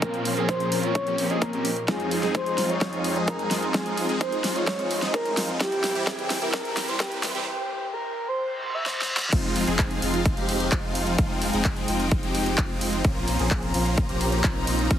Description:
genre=EDM, festival progressive house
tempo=129 BPM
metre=4/4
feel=straight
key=F minor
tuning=A4 = 440 Hz
part: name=breathy flute-like synth lead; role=melody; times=0.0-9.2 s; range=G4 to E5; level=-29 LUFS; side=equal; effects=lush chorus, tape echo
part: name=rich chamber string section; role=sustained chords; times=0.0-15.0 s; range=C2 to Bb5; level=-33 LUFS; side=left 1 dB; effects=sidechain pumping, low-pass filter
part: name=supersaw chords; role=riff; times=0.0-15.0 s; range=E3 to Ab4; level=-27 LUFS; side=right 1 dB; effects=phaser, sidechain pumping, low-pass filter, tape echo
part: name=big-room dance drum kit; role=drums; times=0.0-15.0 s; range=crash cymbal, handclaps, hi-hat, snare drum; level=-30 LUFS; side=equal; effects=overdrive
part: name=electronic kick drum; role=drums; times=0.0-15.0 s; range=none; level=-24 LUFS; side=equal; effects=overdrive, high-pass filter on kick
part: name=riser and reverse cymbal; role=sound effects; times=4.8-9.3 s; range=none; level=-35 LUFS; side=equal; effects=none
part: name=saturated sub bass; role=bass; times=9.3-15.0 s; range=F1 to Bb1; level=-30 LUFS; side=equal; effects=sidechain pumping
room=light reverb, digital ambience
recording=heavily compressed radio sound, multiband compression, high-pass filter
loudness=-22 LUFS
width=side -10 dB against mid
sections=0.0-9.3 A section; 9.3-15.0 B section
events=build-up 0.0-9.3; filter sweep on supersaw synth 0.0-9.3; filter sweep on string section 0.0-9.3; filter sweep 0.0-9.3; drum fill 1.9-7.5, 8.9-9.3; reverse cymbal 8.6-9.3; drop 9.3-15.0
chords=0.0 Bbmadd9; 1.9 Fm7; 5.6 C; 9.3 Fm7; 13.0 Bbmadd9

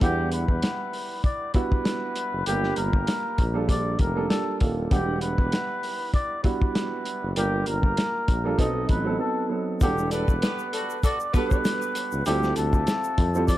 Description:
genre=hip hop, boom-bap hip-hop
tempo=98 BPM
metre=4/4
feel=swing 54% on 16ths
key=E minor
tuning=A4 = 441 Hz
part: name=trumpet with cup mute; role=melody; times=0.0-13.6 s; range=G4 to D#5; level=-29 LUFS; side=left 1 dB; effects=high-pass filter, low-pass filter, ping-pong delay
part: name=dark upright piano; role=accompaniment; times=0.0-13.6 s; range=F#3 to F#5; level=-29 LUFS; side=right 3 dB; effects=cassette tape, high-pass filter, low-pass filter
part: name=warm tuba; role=bass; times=0.0-13.6 s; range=D#1 to F2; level=-27 LUFS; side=equal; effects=none
part: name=warm soul drum kit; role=drums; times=0.0-13.6 s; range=hi-hat, kick drum, snare drum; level=-24 LUFS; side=equal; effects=none
part: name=egg shaker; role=percussion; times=9.8-13.6 s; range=none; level=-45 LUFS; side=left 7 dB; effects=none
part: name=clear saxophone section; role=stabs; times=10.1-11.6 s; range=B3 to D5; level=-34 LUFS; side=left 2 dB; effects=high-pass filter, low-pass filter, ping-pong delay
room=small room ambience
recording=dark, warm production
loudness=-22 LUFS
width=side -14 dB against mid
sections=0.0-9.8 A section; 9.8-13.6 B section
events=break 9.2-9.8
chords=0.0 Em7; 2.5 Gm7; 4.9 Em7; 7.4 Gm7; 8.6 B7b9; 9.8 Em11; 12.3 Dm11

